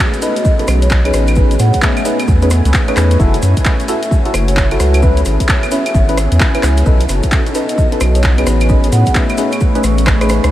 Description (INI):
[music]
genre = UK garage, two-step garage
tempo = 131 BPM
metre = 4/4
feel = swing 63% on 16ths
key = unclear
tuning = A4 = 440 Hz
[part]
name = warm analog pad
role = sustained chords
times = 0.0-10.5 s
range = A3 to G#5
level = -25 LUFS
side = left 1 dB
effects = chorus, sidechain pumping
[part]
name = deep dark ambient pad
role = texture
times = 0.0-10.5 s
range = A3 to E6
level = -22 LUFS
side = left 2 dB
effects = chorus, built-in reverb, sidechain pumping
[part]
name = house drum kit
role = drums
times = 0.1-10.5 s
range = claves, handclaps, hi-hat, rim click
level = -20 LUFS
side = equal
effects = small room reverb
[part]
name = maracas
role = percussion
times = 0.1-10.5 s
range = none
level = -31 LUFS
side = right 1 dB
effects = none
[part]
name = vibraphone with soft mallets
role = melody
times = 0.2-9.3 s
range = B4 to F#5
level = -23 LUFS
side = equal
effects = diffuse ambient delay
[part]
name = percussive organ stab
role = stabs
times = 0.2-10.5 s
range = C#4 to B4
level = -19 LUFS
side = equal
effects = wide subtle chorus, vintage 12-bit sampler grit, diffuse ambient delay
[part]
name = electronic kick drum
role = drums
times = 0.4-10.2 s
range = none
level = -14 LUFS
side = equal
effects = small room reverb
[part]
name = saturated sub bass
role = bass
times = 0.7-10.5 s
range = F#1 to A2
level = -12 LUFS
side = equal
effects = none
[sound]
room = moderate huge ambient reverb, RT60 7.0 s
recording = dreamy mix soaked in reverb, vinyl crackle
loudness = -10 LUFS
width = side -14 dB against mid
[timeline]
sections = 0.0-10.5 A section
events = drop 0.0-10.5; drum fill 9.8-10.5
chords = 0.0 B7; 1.1 Amaj9#11; 3.2 F#m7; 5.0 C#m7; 6.9 B7; 8.5 Amaj9#11